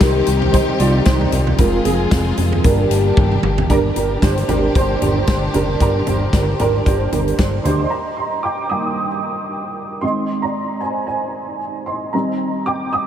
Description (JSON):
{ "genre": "piano-driven pop", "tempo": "114 BPM", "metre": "4/4", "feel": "swing 56% on 16ths", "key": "unclear", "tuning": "A4 = 443 Hz", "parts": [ { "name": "dark French horn section", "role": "second line", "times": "0.0-3.4 s", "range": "Eb3 to G4", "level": "-24 LUFS", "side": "left 7 dB", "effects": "diffuse ambient delay" }, { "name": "dark upright piano", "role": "accompaniment", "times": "0.0-13.1 s", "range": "G2 to Eb6", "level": "-19 LUFS", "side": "right 2 dB", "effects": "ensemble chorus" }, { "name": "dark studio string section", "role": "sustained chords", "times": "0.0-7.9 s", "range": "Bb2 to Ab4", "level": "-25 LUFS", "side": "left 2 dB", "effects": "none" }, { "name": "fat analog bass", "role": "bass", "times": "0.0-7.9 s", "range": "F1 to D2", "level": "-19 LUFS", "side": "equal", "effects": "none" }, { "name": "natural country drum kit", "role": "drums", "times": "0.0-7.8 s", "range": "hi-hat, kick drum, snare drum, toms", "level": "-19 LUFS", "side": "equal", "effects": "none" } ], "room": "moderate huge ambient reverb, RT60 4.7 s", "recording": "dreamy mix soaked in reverb", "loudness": "-15 LUFS", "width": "side -10 dB against mid", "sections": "0.0-3.7 A section; 3.7-7.9 B section; 7.9-13.1 C section", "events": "upright piano solo 0.0-3.7, 7.9-13.1; drum fill 3.2-3.7", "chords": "0.0 Cm; 1.6 Fm; 2.6 Gm; 7.9 Eb; 10.0 Ab; 12.1 Cm" }